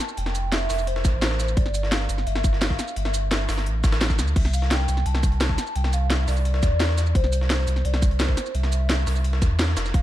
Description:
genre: liquid drum and bass.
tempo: 172 BPM.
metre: 4/4.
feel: straight.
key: C major.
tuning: A4 = 440 Hz.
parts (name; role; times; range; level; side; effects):
hollow clarinet-like synth lead; melody; 0.0-10.0 s; C5 to A5; -31 LUFS; left 1 dB; wide subtle chorus, tape echo.
breakbeat sampler-style drum kit; drums; 0.0-10.0 s; hi-hat, snare drum; -31 LUFS; equal; high-pass filter on hats, small room ambience, high-pass filter on snare, high-pass filter on room.
drum and bass drum kit; drums; 0.0-10.0 s; crash cymbal, hi-hat, shaker, snare drum; -28 LUFS; equal; small room ambience.
warm sub bass; bass; 0.2-10.0 s; F1 to E2; -23 LUFS; equal; none.
electronic kick drum; drums; 1.0-10.0 s; none; -21 LUFS; equal; small room ambience.
room: little or no reverb.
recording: dark, warm production.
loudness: -20 LUFS.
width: side -14 dB against mid.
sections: 0.0-10.0 A section.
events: none.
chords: 0.0 Fmaj9; 1.6 Gsus2; 4.4 C.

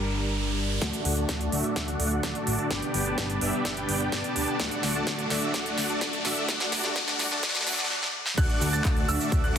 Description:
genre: EDM, festival progressive house.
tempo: 127 BPM.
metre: 4/4.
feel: straight.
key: D major.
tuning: A4 = 440 Hz.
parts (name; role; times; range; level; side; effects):
lush unison pad; sustained chords; 0.0-9.6 s; D3 to Bb5; -35 LUFS; equal; chorus, sidechain pumping.
fat analog bass; bass; 0.0-9.6 s; G1 to D2; -32 LUFS; equal; sidechain pumping.
riser; sound effects; 0.0-7.9 s; none; -35 LUFS; left 2 dB; none.
big-room dance drum kit; drums; 0.1-9.6 s; crash cymbal, finger snaps, handclaps, hi-hat, shaker, snare drum; -30 LUFS; right 1 dB; high-pass filter on perc, low-pass filter on perc, high-pass filter on snare, low-pass filter on snare, high-pass filter on hats, low-pass filter on hats, high-pass filter on cymbals, low-pass filter on cymbals.
dense compressed supersaw; riff; 0.8-9.6 s; A3 to A5; -29 LUFS; equal; sidechain pumping, low-pass filter, dub echo.
electronic kick drum; drums; 0.8-9.4 s; none; -29 LUFS; equal; high-pass filter on kick.
dark grand piano; arpeggios; 8.4-9.6 s; E6 to A6; -32 LUFS; right 2 dB; sidechain pumping, dub echo.
room: moderate lush hall reverb, RT60 2.0 s.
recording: dense, heavily limited modern master, high-pass filter.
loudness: -24 LUFS.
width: side -8 dB against mid.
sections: 0.8-8.4 A section; 8.4-9.6 B section.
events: riser 0.0-0.8, 0.8-7.9; build-up 0.8-8.4; drum fill 0.8-7.9, 7.9-8.4; filter sweep on supersaw synth 0.8-8.4; filter sweep 0.8-8.4; stop 7.9-8.4; drop 8.4-9.6.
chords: 0.0 Gm; 0.8 D; 2.7 G; 4.6 D; 6.5 Gm; 8.4 D.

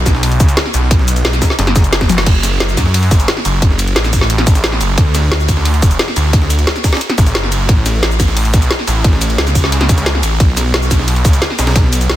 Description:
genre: dark technical drum and bass.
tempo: 177 BPM.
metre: 4/4.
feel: straight.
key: unclear.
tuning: A4 = 441 Hz.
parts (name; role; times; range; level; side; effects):
snarling distorted saw bass; bass; 0.0-12.2 s; E1 to F#2; -14 LUFS; equal; distortion, overdrive.
breakbeat sampler-style drum kit; drums; 0.1-12.2 s; hi-hat, ride cymbal, snare drum; -24 LUFS; right 1 dB; high-pass filter on snare, high-pass filter on cymbals, high-pass filter on hats.
drum and bass drum kit; drums; 0.1-12.2 s; cabasa, crash cymbal, hi-hat, ride cymbal, snare drum, toms; -16 LUFS; equal; none.
electronic kick drum; drums; 0.1-11.8 s; none; -12 LUFS; equal; none.
room: little or no reverb.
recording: dense, heavily limited modern master.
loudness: -10 LUFS.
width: side -13 dB against mid.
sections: 0.0-12.2 A section.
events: drum fill 2.1.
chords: none.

